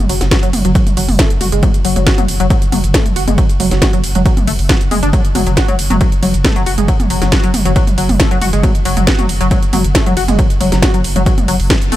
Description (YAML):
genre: driving peak-time techno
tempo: 137 BPM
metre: 4/4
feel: straight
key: F# minor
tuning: A4 = 440 Hz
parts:
  - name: tight sequenced synth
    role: riff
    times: 0.1-12.0 s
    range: F#3 to F#4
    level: -18 LUFS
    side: left 2 dB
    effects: chorus, sidechain pumping, dub echo
  - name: saturated sub bass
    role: bass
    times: 0.1-12.0 s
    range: F#1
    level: -17 LUFS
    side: equal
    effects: sidechain pumping, low-pass filter
  - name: techno drum kit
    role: drums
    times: 0.1-12.0 s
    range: hi-hat, ride cymbal, snare drum, toms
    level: -17 LUFS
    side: right 1 dB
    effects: sidechain pumping on hats, sidechain pumping on toms, sidechain pumping on cymbals
  - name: electronic kick drum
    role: drums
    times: 0.3-11.8 s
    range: none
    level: -14 LUFS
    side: equal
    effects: none
room: little or no reverb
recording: none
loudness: -10 LUFS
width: side -14 dB against mid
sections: 0.0-12.0 A section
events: band accent 11.7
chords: none